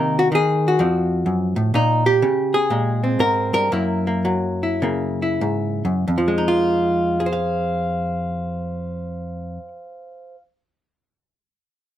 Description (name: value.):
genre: solo jazz.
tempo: 89-127 BPM.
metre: 4/4.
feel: swing 66% on 8ths.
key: F minor.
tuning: A4 = 438 Hz.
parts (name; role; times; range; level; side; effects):
hollow-body jazz guitar; solo; 0.0-10.4 s; F2 to F5; -18 LUFS; equal; none.
room: light reverb.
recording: minimal, uncompressed stereo recording.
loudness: -18 LUFS.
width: side -11 dB against mid.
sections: 0.0-1.7 A section; 1.7-6.1 B section; 6.1-11.5 C section.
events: slowing down 1.7-6.1.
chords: 0.0 Cm7b5; 0.8 F; 1.7 Bbm9; 3.7 Gb7; 6.1 Fm7.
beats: 0.32 0.79 1.26 | 1.74 2.21 2.70 3.19 | 3.71 4.25 4.81 5.42 | 6.07 6.74 7.42 8.09 | 8.77 9.44 10.12.